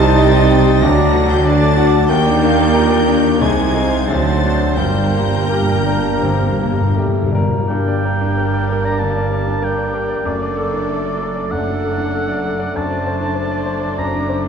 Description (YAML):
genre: classical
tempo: 80-99 BPM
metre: 4/4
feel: rubato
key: G minor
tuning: A4 = 441 Hz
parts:
  - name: bright grand piano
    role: melody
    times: 0.0-14.5 s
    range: C2 to Eb5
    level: -20 LUFS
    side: left 4 dB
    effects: none
  - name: clear symphonic violin section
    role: melody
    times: 0.0-14.5 s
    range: Bb4 to Bb6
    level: -28 LUFS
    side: left 3 dB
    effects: none
  - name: clear oboe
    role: second line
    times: 0.0-14.4 s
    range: Bb4 to Bb5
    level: -26 LUFS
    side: right 2 dB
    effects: none
  - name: concert flute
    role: second line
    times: 0.0-14.5 s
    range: G5 to D6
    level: -28 LUFS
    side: equal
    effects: none
  - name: warm clarinet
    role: second line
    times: 0.0-14.5 s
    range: D4 to C5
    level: -27 LUFS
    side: left 1 dB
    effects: none
  - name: warm symphonic violin section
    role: second line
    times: 0.0-14.5 s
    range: G4 to Bb5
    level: -30 LUFS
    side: left 3 dB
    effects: none
  - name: mellow bassoon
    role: accompaniment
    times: 0.0-14.5 s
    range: F#3 to D4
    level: -26 LUFS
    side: right 3 dB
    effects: none
  - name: rich symphonic viola section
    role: accompaniment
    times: 0.0-14.5 s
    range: Bb3 to Bb4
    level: -26 LUFS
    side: equal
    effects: none
  - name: warm French horn section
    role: sustained chords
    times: 0.0-14.2 s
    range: F#3 to G4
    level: -24 LUFS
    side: left 5 dB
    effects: none
  - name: dark trumpet section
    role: stabs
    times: 0.0-7.3 s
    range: Bb4 to Eb5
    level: -24 LUFS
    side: right 3 dB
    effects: none
  - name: clear symphonic double bass section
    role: bass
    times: 0.0-14.5 s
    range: F#1 to Eb2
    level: -22 LUFS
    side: right 4 dB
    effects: none
  - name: dark tuba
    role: bass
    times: 0.0-7.5 s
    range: G1 to Eb2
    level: -22 LUFS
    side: right 3 dB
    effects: none
  - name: rich symphonic cello section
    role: bass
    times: 0.0-14.5 s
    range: F#2 to Eb3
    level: -24 LUFS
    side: right 3 dB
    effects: none
  - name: timpani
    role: percussion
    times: 4.8-7.6 s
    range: G2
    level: -21 LUFS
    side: left 2 dB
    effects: none
room: wet concert hall reverb, RT60 2.4 s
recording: dark, warm production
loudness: -14 LUFS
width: side -6 dB against mid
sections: 0.0-7.7 A section; 7.7-14.5 B section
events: timpani fill 4.8-7.7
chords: 0.0 Cm; 0.8 D; 2.1 Ebmaj7; 3.4 Ab/C; 4.1 D7; 4.8 Gm; 10.3 D/F#; 12.8 D7/F#